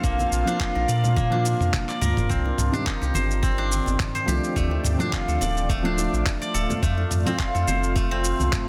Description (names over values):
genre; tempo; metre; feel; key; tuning
organic downtempo; 106 BPM; 4/4; swing 55% on 16ths; C dorian; A4 = 444 Hz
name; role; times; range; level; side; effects
felt-muted upright piano; accompaniment; 0.0-7.4 s; Eb3 to F4; -32 LUFS; equal; sidechain pumping, delay
granular cloud pad; sustained chords; 0.0-8.7 s; Eb3 to G5; -35 LUFS; equal; built-in reverb, sidechain pumping
steel-string zither; arpeggios; 0.0-8.7 s; A3 to D5; -29 LUFS; equal; delay
warm sub bass; bass; 0.0-8.5 s; D1 to Bb2; -27 LUFS; equal; sidechain pumping
dusty soul sampler-style drum kit; drums; 0.0-8.7 s; handclaps, shaker, toms; -32 LUFS; equal; overdrive, small room ambience
electronic kick drum; drums; 0.0-8.6 s; none; -28 LUFS; equal; overdrive, small room ambience
congas and bongos; percussion; 0.2-8.5 s; none; -38 LUFS; equal; none
room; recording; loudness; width
light reverb, small room ambience; dense, heavily limited modern master; -23 LUFS; mono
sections
0.0-2.3 A section; 2.3-8.7 A section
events
drum fill 1.2-2.3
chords
0.0 Bb; 2.3 Cmadd9; 4.6 Dm; 6.8 F